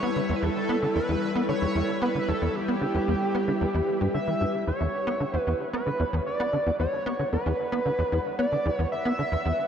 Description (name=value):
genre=ambient, sequencer-driven space music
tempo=113 BPM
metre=4/4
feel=straight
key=unclear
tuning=A4 = 440 Hz
part: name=pulse-width lead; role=melody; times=0.0-9.7 s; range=G4 to E5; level=-28 LUFS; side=equal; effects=chorus, tape echo
part: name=string machine, full ensemble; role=sustained chords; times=0.0-9.7 s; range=G3 to E5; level=-31 LUFS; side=equal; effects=ensemble chorus
part: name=tight sequencer bass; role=riff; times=0.0-9.5 s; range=E2 to B3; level=-28 LUFS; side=equal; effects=ensemble chorus, tape echo
part: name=bubbling stepped-filter texture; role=texture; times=5.0-9.7 s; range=F#5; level=-42 LUFS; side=right 1 dB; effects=chorus, built-in reverb
room=wet huge ambient reverb, RT60 8.5 s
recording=dark, warm production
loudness=-24 LUFS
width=side -8 dB against mid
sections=0.0-4.7 A section; 4.7-9.7 B section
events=none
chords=0.0 Em